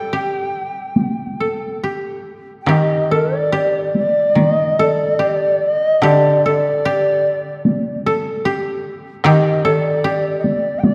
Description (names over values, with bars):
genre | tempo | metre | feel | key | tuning
japanese traditional, Japanese chamber music | 68-76 BPM | 4/4 | rubato | unclear | A4 = 440 Hz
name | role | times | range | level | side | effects
bright reedy long shakuhachi | melody | 0.0-10.9 s | D5 to G5 | -20 LUFS | equal | none
koto | second line | 0.0-10.9 s | G4 to A4 | -23 LUFS | equal | none
koto | accompaniment | 0.0-10.9 s | D3 to G3 | -22 LUFS | equal | none
taiko ensemble | percussion | 1.0-10.9 s | none | -23 LUFS | equal | none
room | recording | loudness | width
wet church reverb, RT60 2.8 s | dark, warm production | -17 LUFS | mono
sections
0.0-2.7 A section; 2.7-10.9 B section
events
none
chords
none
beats
0.13 0.97 1.83 | 2.69 3.53 4.37 5.20 | 6.03 6.84 7.66 8.46 | 9.25 10.05 10.85